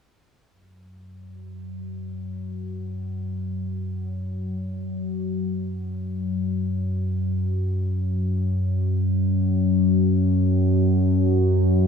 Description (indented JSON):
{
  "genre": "ambient",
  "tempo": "free time",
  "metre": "none",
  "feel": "none",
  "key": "unclear",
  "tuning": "A4 = 444 Hz",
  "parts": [
    { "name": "analog drone", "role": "drone", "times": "1.1-11.9 s", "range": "F#2 to F#3", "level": "-22 LUFS", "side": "left 1 dB", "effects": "chorus" }
  ],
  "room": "moderate huge ambient reverb, RT60 8.2 s",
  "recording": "small room ambience",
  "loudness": "-22 LUFS",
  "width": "side -6 dB against mid",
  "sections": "0.5-11.9 A section",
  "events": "fade-in on synth drone 0.5-11.9",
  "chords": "none"
}